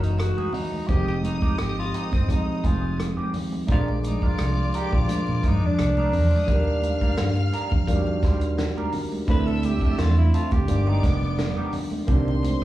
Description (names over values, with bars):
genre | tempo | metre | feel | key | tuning
lush 1970s-style soul | 86 BPM | 4/4 | swing 54% on 16ths | unclear | A4 = 440 Hz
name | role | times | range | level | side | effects
growling tenor saxophone | melody | 0.0-11.7 s | B3 to B4 | -30 LUFS | left 1 dB | slapback echo
warm studio string section | second line | 0.0-12.6 s | Bb4 to F6 | -36 LUFS | left 2 dB | slapback echo
tine electric piano | accompaniment | 0.0-12.6 s | Eb3 to Ab4 | -28 LUFS | left 1 dB | overdrive, slapback echo
electric guitar through a small old amp | riff | 0.0-12.6 s | Eb3 to C5 | -36 LUFS | right 5 dB | wah, slapback echo
vintage muted fingered electric bass | bass | 0.0-12.6 s | F1 to Bb2 | -23 LUFS | right 1 dB | none
vintage drum kit | drums | 0.0-12.6 s | hi-hat, kick drum, rim click, snare drum | -26 LUFS | equal | none
congas | percussion | 0.2-12.6 s | none | -34 LUFS | right 6 dB | none
room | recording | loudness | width
little or no reverb | live gig heard through the venue's PA, club reverb, small room ambience | -20 LUFS | side -15 dB against mid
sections
0.0-12.6 A section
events
tenor saxophone solo 0.0-12.6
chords
0.0 F#13; 0.9 Fm9; 3.7 Bb7; 6.5 Ebmaj7; 9.3 Dm9; 10.7 G7b13; 12.1 Cm9